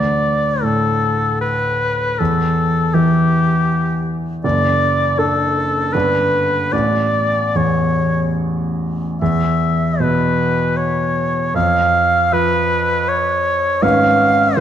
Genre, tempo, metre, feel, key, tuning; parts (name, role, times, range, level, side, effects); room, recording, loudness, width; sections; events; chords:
classical, romantic duo for oboe and grand piano; 72-81 BPM; 3/4; rubato; D major; A4 = 439 Hz
clear oboe; melody; 0.0-14.6 s; G4 to E#5; -17 LUFS; left 1 dB
clear grand piano; accompaniment; 0.0-14.6 s; F#1 to B4; -17 LUFS; right 1 dB
wet recital hall reverb, RT60 1.5 s; dark, warm production; -14 LUFS; side -10 dB against mid
0.0-14.6 A section
0.0 D5; 2.2 N.C.; 4.4 D/F#; 5.9 G; 6.7 A; 9.2 C#m7/E; 11.5 N.C.; 13.8 C#7/G#